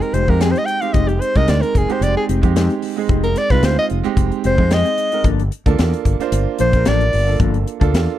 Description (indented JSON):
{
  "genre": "electric jazz fusion",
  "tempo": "112 BPM",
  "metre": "4/4",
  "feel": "swing 53% on 16ths",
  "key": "F dorian",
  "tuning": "A4 = 440 Hz",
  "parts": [
    { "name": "clear soprano saxophone", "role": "melody", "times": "0.0-7.4 s", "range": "G4 to G5", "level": "-19 LUFS", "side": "left 1 dB", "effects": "slapback echo" },
    { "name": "bright baby grand piano", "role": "accompaniment", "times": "0.0-8.2 s", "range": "Ab3 to C5", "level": "-22 LUFS", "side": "right 12 dB", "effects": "none" },
    { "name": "mellow electric guitar", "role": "stabs", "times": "0.0-8.1 s", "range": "F3 to A4", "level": "-25 LUFS", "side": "left 16 dB", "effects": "wide subtle chorus" },
    { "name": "crisp fusion drum kit", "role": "drums", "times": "0.0-8.1 s", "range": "hi-hat, kick drum, snare drum", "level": "-19 LUFS", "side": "left 1 dB", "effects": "none" },
    { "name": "fretless electric bass", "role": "bass", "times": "0.1-8.1 s", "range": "F1 to F2", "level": "-18 LUFS", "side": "left 1 dB", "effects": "none" }
  ],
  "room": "little or no reverb",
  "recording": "dry, close 1970s-style studio recording",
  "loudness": "-14 LUFS",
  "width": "side -12 dB against mid",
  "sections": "0.0-8.2 A section",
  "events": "soprano saxophone solo 0.0-8.2",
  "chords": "0.0 Fm9; 5.3 Gm9",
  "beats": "0.42 | 0.95 1.49 2.03 2.57 | 3.10 3.64 4.18 4.71 | 5.25 5.79 6.33 6.86 | 7.40 7.94"
}